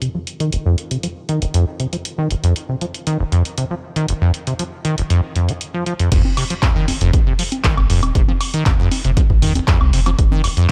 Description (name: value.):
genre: acid house.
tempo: 118 BPM.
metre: 4/4.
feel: straight.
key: F minor.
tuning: A4 = 441 Hz.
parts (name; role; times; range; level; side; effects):
acid bass, saw; riff; 0.0-10.7 s; F1 to F3; -21 LUFS; equal; subtle chorus, sidechain pumping, tape echo.
punchy analog drum machine; drums; 0.0-10.7 s; congas, crash cymbal, handclaps, hi-hat, toms, woodblock; -25 LUFS; equal; none.
warm sub bass; bass; 6.1-10.3 s; Eb1 to C2; -20 LUFS; equal; sidechain pumping.
electronic kick drum; drums; 6.1-10.3 s; none; -18 LUFS; equal; none.
room: light reverb.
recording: none.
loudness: -18 LUFS.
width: mono.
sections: 0.0-6.1 A section; 6.1-10.7 B section.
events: filter sweep on acid bass 0.0-6.1; drop 6.1-10.7.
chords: 0.0 F5; 6.1 F7(no3).